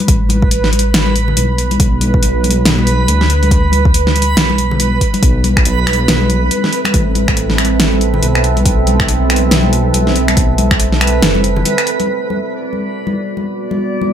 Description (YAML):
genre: deep dubstep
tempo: 140 BPM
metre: 4/4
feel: swing 60% on 16ths, half-time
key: B phrygian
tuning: A4 = 437 Hz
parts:
  - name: deep house drum kit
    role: drums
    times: 0.0-12.1 s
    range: finger snaps, hi-hat, snare drum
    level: -16 LUFS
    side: equal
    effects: none
  - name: congas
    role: percussion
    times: 0.0-14.1 s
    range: none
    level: -20 LUFS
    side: left 3 dB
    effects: dub echo
  - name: backwards swelling texture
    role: texture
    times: 0.0-14.1 s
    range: B4 to D5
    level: -20 LUFS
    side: right 4 dB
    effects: built-in reverb
  - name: dark detuned saw bass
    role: bass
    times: 0.1-11.6 s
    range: F#1 to D2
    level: -15 LUFS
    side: equal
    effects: none
  - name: electronic kick drum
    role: drums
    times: 0.1-10.8 s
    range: none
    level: -14 LUFS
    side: equal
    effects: none
  - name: deep dark ambient pad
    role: sustained chords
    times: 6.3-14.1 s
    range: B3 to E5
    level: -19 LUFS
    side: right 4 dB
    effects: chorus, built-in reverb
room: light reverb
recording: none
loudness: -11 LUFS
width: side -9 dB against mid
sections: 0.0-12.1 A section; 12.1-14.1 B section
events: break 11.7-12.1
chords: 0.0 Bm; 5.2 Am; 12.1 Bm